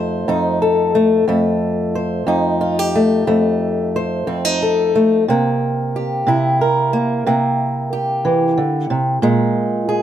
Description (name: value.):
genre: blues.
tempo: 60 BPM (dotted quarters).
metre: 12/8.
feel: straight.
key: F mixolydian.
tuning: A4 = 442 Hz.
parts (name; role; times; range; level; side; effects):
fingerpicked old ladder-braced acoustic guitar; solo; 0.0-10.0 s; F2 to C5; -15 LUFS; equal; none.
room: little or no reverb.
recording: close, detailed microphones.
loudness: -15 LUFS.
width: side -10 dB against mid.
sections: 0.0-10.0 A section.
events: none.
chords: 0.0 F7; 5.3 C7; 9.2 Bb7(no3).